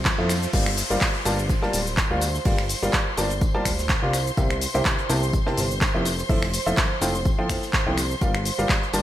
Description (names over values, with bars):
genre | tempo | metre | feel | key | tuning
piano house | 125 BPM | 4/4 | swing 54% on 16ths | G dorian | A4 = 444 Hz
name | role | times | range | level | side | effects
dark studio string section | sustained chords | 0.0-9.0 s | C5 to C6 | -32 LUFS | right 2 dB | sidechain pumping
fat analog bass | bass | 0.0-9.0 s | D1 to F2 | -27 LUFS | equal | sidechain pumping
riser and downlifter | sound effects | 0.0-4.4 s | none | -33 LUFS | left 1 dB | none
granular cloud pad | texture | 0.0-0.5 s | F4 to A5 | -41 LUFS | right 2 dB | none
electronic kick drum | drums | 0.1-8.8 s | none | -24 LUFS | equal | none
punchy analog drum machine | drums | 0.1-9.0 s | crash cymbal, finger snaps, handclaps, hi-hat, shaker | -26 LUFS | equal | gated reverb
tight funk drum kit | drums | 0.1-9.0 s | hi-hat, snare drum, tambourine | -38 LUFS | right 2 dB | none
clear upright piano | riff | 0.2-9.0 s | C3 to A5 | -26 LUFS | equal | vintage 12-bit sampler grit, sidechain pumping, ping-pong delay
room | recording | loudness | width
light reverb, studio ambience | bright 1980s-style digital production | -20 LUFS | side -13 dB against mid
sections
0.5-9.0 A section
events
riser 0.0-0.5; drop 0.5-9.0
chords
0.0 Fmaj7; 0.5 Gm7; 4.1 C7; 6.1 Fmaj7; 8.2 Gm7